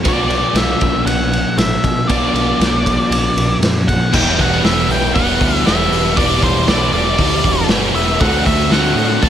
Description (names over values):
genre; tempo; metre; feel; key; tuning
rock, shoegaze and dream pop; 118 BPM; 4/4; straight; E minor from 4.1 s; A4 = 439 Hz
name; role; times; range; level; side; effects
overdriven semi-hollow guitar; riff; 0.0-9.3 s; E2 to F#4; -16 LUFS; equal; wide subtle chorus
growling picked electric bass; bass; 0.0-9.3 s; E1 to B2; -21 LUFS; equal; overdrive
raw garage drum kit; drums; 0.0-9.3 s; crash cymbal, hi-hat, kick drum, ride cymbal, snare drum; -18 LUFS; equal; none
octave-fuzz lead guitar; melody; 0.1-9.3 s; C5 to A5; -19 LUFS; left 1 dB; distortion, analog delay
room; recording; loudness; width
light reverb, small room ambience; lossy compression artefacts; -12 LUFS; side -10 dB against mid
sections
0.0-4.1 A section; 4.1-9.3 B section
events
none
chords
0.1 Bm; 4.1 Em7; 8.2 D7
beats
| 0.06 0.56 1.07 1.58 | 2.09 2.60 3.11 3.62 | 4.13 4.63 5.14 5.65 | 6.16 6.67 7.17 7.68 | 8.19 8.70 9.21